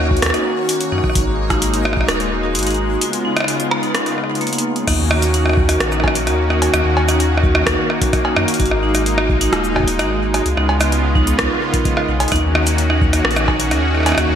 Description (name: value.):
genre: IDM.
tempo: 129 BPM.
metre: 4/4.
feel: straight.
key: Eb minor.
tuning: A4 = 440 Hz.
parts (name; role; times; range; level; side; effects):
warm analog pad; sustained chords; 0.0-14.4 s; Db3 to Gb4; -21 LUFS; equal; chorus, tremolo.
vibraphone with hard mallets; arpeggios; 0.0-14.4 s; Bb3 to Eb5; -21 LUFS; equal; ping-pong delay.
warm sub bass; bass; 0.0-14.4 s; Eb1 to Gb2; -19 LUFS; equal; none.
backwards swelling texture; texture; 0.0-4.9, 13.4-14.4 s; Ab4 to Db5; -34 LUFS; left 1 dB; built-in reverb, lush chorus.
electronic kick drum; drums; 0.1-2.1, 4.9-13.6 s; none; -20 LUFS; equal; none.
booming analog drum machine; drums; 0.2-14.3 s; cowbell, crash cymbal, hi-hat, rim click, shaker; -19 LUFS; right 1 dB; gated reverb, digital delay.
room: moderate lush hall reverb, RT60 1.8 s.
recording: bright 1980s-style digital production.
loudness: -14 LUFS.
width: side -9 dB against mid.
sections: 0.0-4.9 A section; 4.9-14.4 B section.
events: none.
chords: 0.0 Ebm7; 1.2 Absus2; 3.0 Db7; 4.9 Ebm7; 8.6 Absus2; 10.5 Db7; 12.3 Ebm7.